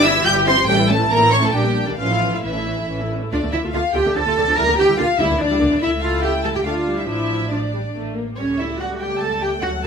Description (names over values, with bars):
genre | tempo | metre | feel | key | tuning
quick classical-period movement for string orchestra | 132-147 BPM | 3/4 | rubato | D minor | A4 = 441 Hz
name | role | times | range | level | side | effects
rich studio violin section | melody | 0.0-9.9 s | C#5 to G6 | -22 LUFS | equal | none
warm chamber violin section | second line | 0.0-9.9 s | D4 to Bb5 | -24 LUFS | left 1 dB | none
warm studio viola section | accompaniment | 0.0-9.9 s | D3 to G4 | -24 LUFS | equal | none
warm studio cello section | bass | 0.0-9.9 s | D3 to Bb4 | -21 LUFS | equal | none
warm studio double bass section | bass | 0.0-9.9 s | G1 to D2 | -25 LUFS | right 2 dB | none
room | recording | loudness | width
light reverb | minimal, uncompressed stereo recording | -16 LUFS | side -6 dB against mid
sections
0.0-3.3 A section; 3.3-9.9 B section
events
none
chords
0.0 Em/G; 0.7 A; 1.5 Gm/Bb; 2.0 A; 3.3 Dm; 4.6 Em7b5/D; 5.8 A/C#; 6.6 Dm; 7.1 Dm/A; 8.0 N.C.; 8.4 A7/C#